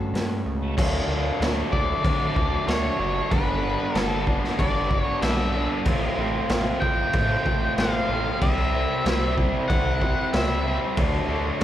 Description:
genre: classic rock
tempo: 94 BPM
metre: 4/4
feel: straight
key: unclear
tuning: A4 = 436 Hz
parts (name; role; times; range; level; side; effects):
- biting overdriven guitar; riff; 0.0-11.6 s; G2 to A4; -26 LUFS; equal; none
- gritty driven synth bass; bass; 0.0-11.6 s; F#1 to D3; -28 LUFS; equal; none
- raw garage drum kit; drums; 0.2-11.6 s; crash cymbal, hi-hat, kick drum, snare drum; -25 LUFS; equal; none
- octave-fuzz lead guitar; melody; 1.7-10.8 s; B4 to G5; -28 LUFS; left 1 dB; distortion
room: small room ambience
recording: live gig heard through the venue's PA, club reverb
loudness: -21 LUFS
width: side -12 dB against mid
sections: 0.8-11.6 A section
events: none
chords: 0.0 F#m; 0.8 D; 3.3 G; 5.9 Fadd9/A; 8.4 C; 11.0 D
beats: 0.14 | 0.78 1.41 2.05 2.68 | 3.32 3.95 4.59 5.22 | 5.86 6.50 7.13 7.77 | 8.41 9.05 9.69 10.33 | 10.97 11.61

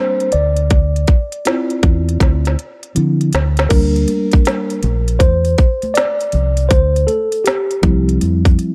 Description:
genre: hip hop, jazz-hop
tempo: 80 BPM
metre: 4/4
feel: swing 66% on 16ths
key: D minor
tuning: A4 = 439 Hz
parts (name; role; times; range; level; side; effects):
- mellow tine electric piano; accompaniment; 0.0-8.7 s; F3 to D5; -20 LUFS; equal; none
- organic electronic drum kit; drums; 0.2-8.7 s; crash cymbal, hi-hat, kick drum, snare drum; -17 LUFS; equal; overdrive
- deep dub fingered electric bass; bass; 0.3-8.6 s; Bb1 to D3; -18 LUFS; equal; none
- tube shaker and congas; percussion; 3.7-8.7 s; none; -32 LUFS; equal; none
room: digital ambience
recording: none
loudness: -15 LUFS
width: mono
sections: 0.0-3.7 A section; 3.7-8.7 B section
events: tine electric piano solo 0.0-3.7, 3.7-8.7; drum fill 2.2-3.7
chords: 0.3 Dm9; 3.7 Em7b5 (rootless); 6.7 Dm11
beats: | 0.71 1.46 2.21 2.96 | 3.71 4.46 5.21 5.96 | 6.71 7.46 8.21

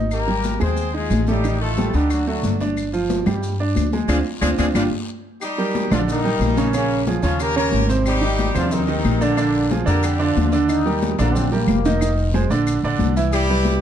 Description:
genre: latin, salsa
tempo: 182 BPM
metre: 4/4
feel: straight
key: unclear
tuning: A4 = 440 Hz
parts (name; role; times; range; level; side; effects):
- bright baby grand piano; accompaniment; 0.0-13.8 s; C3 to E5; -22 LUFS; right 4 dB; none
- upright bass; bass; 0.0-13.8 s; F1 to G2; -22 LUFS; equal; none
- bright horn section; melody; 0.1-10.5, 13.3-13.8 s; Db3 to C5; -24 LUFS; left 2 dB; plate reverb
- claves; percussion; 0.1-13.5 s; none; -36 LUFS; left 10 dB; none
- congas; percussion; 0.1-13.8 s; none; -26 LUFS; left 4 dB; none
- guiro; percussion; 0.1-13.8 s; none; -39 LUFS; left 6 dB; none
- maracas; percussion; 0.1-13.8 s; none; -39 LUFS; left 4 dB; none
- bright trombone section; second line; 10.7-12.1 s; Bb3 to Eb4; -26 LUFS; left 5 dB; none
room: light reverb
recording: dark, warm production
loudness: -17 LUFS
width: side -9 dB against mid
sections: 0.0-5.4 A section; 5.4-13.8 B section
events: band accent 4.1-5.4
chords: 0.1 Abmaj7; 1.4 F13/A; 2.1 D; 2.8 G5; 4.1 Dm7b5; 4.8 G5; 5.4 Ebmaj7; 6.7 Bbm7; 7.4 Eb7; 8.1 Abmaj7; 9.4 Bb; 10.7 Ebmaj7; 12.0 Fm7; 12.7 Bbadd9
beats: | 0.12 0.45 0.78 1.11 | 1.44 1.77 2.11 2.44 | 2.77 3.10 3.43 3.76 | 4.09 4.42 4.75 5.08 | 5.42 5.75 6.08 6.41 | 6.74 7.07 7.40 7.73 | 8.06 8.39 8.72 9.05 | 9.38 9.71 10.04 10.37 | 10.70 11.02 11.35 11.68 | 12.01 12.34 12.67 13.00 | 13.33 13.66

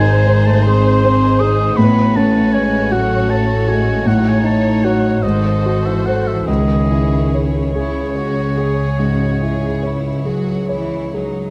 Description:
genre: classical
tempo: 45-54 BPM (dotted quarters)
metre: 12/8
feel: rubato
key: C# minor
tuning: A4 = 440 Hz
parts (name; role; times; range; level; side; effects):
- clear grand piano; melody; 0.0-11.5 s; C#2 to C#5; -20 LUFS; equal; none
- rich chamber violin section; melody; 0.0-11.3 s; B#4 to C#5; -33 LUFS; equal; none
- rich studio violin section; second line; 0.0-11.5 s; C#4 to A4; -32 LUFS; equal; none
- warm oboe; second line; 0.0-10.2 s; C#5 to D#6; -25 LUFS; equal; none
- rich studio viola section; accompaniment; 0.0-10.9 s; G#4 to C#5; -28 LUFS; equal; none
- mellow French horn section; sustained chords; 0.0-10.3 s; C#3 to D#4; -24 LUFS; equal; none
- rich chamber cello section; bass; 0.0-11.5 s; G#2 to F#3; -23 LUFS; equal; none
- rich chamber double bass section; bass; 0.0-11.3 s; G#1 to C#2; -23 LUFS; equal; none
room: moderate recital hall reverb, RT60 1.9 s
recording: close, detailed microphones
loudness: -16 LUFS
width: mono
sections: 0.0-11.5 A section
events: none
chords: 0.0 G#; 1.8 F#m/A; 4.1 D#m7b5/A; 5.2 G#7b9; 6.5 C#m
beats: 0.64 | 1.76 2.90 4.06 5.23 | 6.48 7.73 8.99 10.25

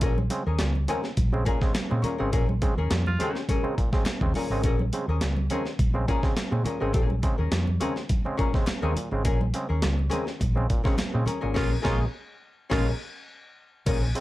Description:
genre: funk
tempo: 104 BPM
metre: 4/4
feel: straight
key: Bb minor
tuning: A4 = 440 Hz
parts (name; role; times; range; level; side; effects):
- archtop guitar, miked and amplified; accompaniment; 0.0-14.2 s; Db4 to Bb4; -31 LUFS; left 4 dB; wah
- mellow clav; stabs; 0.0-14.2 s; Bb2 to C4; -32 LUFS; right 2 dB; none
- hollow-body short-scale fingered electric bass; bass; 0.0-14.1 s; Ab1 to Bb2; -26 LUFS; equal; none
- breakbeat sampler-style drum kit; drums; 0.0-14.2 s; crash cymbal, hi-hat, kick drum, snare drum; -27 LUFS; equal; overdrive
- congas; percussion; 0.0-11.4 s; none; -35 LUFS; right 3 dB; none
- group handclap; percussion; 0.6-11.1 s; none; -42 LUFS; left 3 dB; none
- raspy baritone saxophone; second line; 3.1-3.4, 11.6-12.9 s; F4; -34 LUFS; right 3 dB; none
room: digital ambience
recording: dark, warm production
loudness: -23 LUFS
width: side -16 dB against mid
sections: 0.0-13.9 A section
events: band accent 2.3-4.6, 11.6-13.9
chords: 0.0 Bbm7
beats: | 0.02 0.60 1.18 1.75 | 2.33 2.91 3.49 4.07 | 4.64 5.22 5.80 6.37 | 6.95 7.53 8.10 8.68 | 9.26 9.83 10.41 10.98 | 11.56 12.14 12.71 13.29 | 13.87

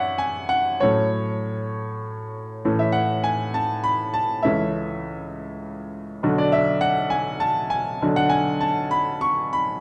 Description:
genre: classical, romantic character piece for solo piano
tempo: 100 BPM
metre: 3/4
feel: rubato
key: unclear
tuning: A4 = 440 Hz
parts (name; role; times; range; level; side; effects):
- bright baby grand piano; solo; 0.0-9.8 s; B1 to C#6; -23 LUFS; equal; none
room: moderate recital hall reverb, RT60 1.6 s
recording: dark, warm production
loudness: -23 LUFS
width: mono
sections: 0.0-9.8 A section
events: none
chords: 0.0 F#m; 0.8 F#m/A; 2.6 A; 4.4 A/C#; 6.2 Bm; 8.0 Bm13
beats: 0.20 | 0.82 1.44 2.04 | 2.65 3.25 3.85 | 4.45 5.04 5.62 | 6.23 6.83 7.42 | 8.02 8.62 9.23

